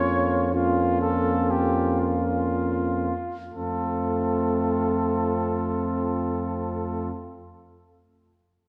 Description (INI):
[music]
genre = classical, brass quintet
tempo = 59 BPM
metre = 4/4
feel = straight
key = F major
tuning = A4 = 441 Hz
[part]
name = mellow trumpet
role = melody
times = 0.0-7.1 s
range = F4 to Db5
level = -31 LUFS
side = equal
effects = none
[part]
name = mellow trumpet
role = second line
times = 0.0-7.1 s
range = F4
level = -34 LUFS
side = equal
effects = none
[part]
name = mellow French horn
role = accompaniment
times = 0.0-7.1 s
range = C4 to Db4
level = -33 LUFS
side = equal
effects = none
[part]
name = warm trombone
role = accompaniment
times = 0.0-7.1 s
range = A3 to Bb3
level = -32 LUFS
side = equal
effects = none
[part]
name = mellow bass trombone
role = bass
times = 0.0-7.1 s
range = F2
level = -30 LUFS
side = equal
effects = none
[sound]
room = moderate scoring stage reverb, RT60 2.0 s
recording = recorded in a church or concert hall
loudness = -25 LUFS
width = mono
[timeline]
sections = 0.0-3.5 A section; 3.5-7.6 B section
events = slowing down 0.0-3.5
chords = 0.0 Bbm/F; 3.5 F